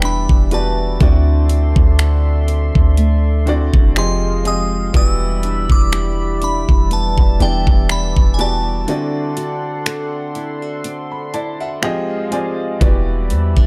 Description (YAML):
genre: contemporary R&B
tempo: 61 BPM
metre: 4/4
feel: swing 54% on 16ths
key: E minor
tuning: A4 = 440 Hz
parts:
  - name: glassy synth bell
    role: melody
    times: 0.0-9.8 s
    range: G5 to E6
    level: -26 LUFS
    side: equal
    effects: chorus, phaser, digital delay
  - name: clear concert grand piano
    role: accompaniment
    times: 0.0-13.7 s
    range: D3 to B5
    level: -26 LUFS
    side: equal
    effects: none
  - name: chorused pulse-width pad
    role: sustained chords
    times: 0.0-13.7 s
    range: G3 to C6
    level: -30 LUFS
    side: equal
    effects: none
  - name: nylon-string guitar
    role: arpeggios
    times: 0.0-13.7 s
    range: D3 to B4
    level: -29 LUFS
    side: equal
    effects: none
  - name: clean 808-style bass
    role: bass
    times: 0.0-13.7 s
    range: E1 to E2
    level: -18 LUFS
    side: equal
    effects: none
  - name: trap drum kit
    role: drums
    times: 0.0-13.7 s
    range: finger snaps, hi-hat, kick drum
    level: -16 LUFS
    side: equal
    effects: none
room: little or no reverb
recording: dark, warm production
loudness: -16 LUFS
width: mono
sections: 0.0-13.7 A section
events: break 8.9-12.8; grand piano fill 10.8-12.8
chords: 0.0 Em7; 1.0 D7; 4.0 Fm7; 4.9 Em7; 8.9 D7; 11.8 Fm7; 12.8 Em7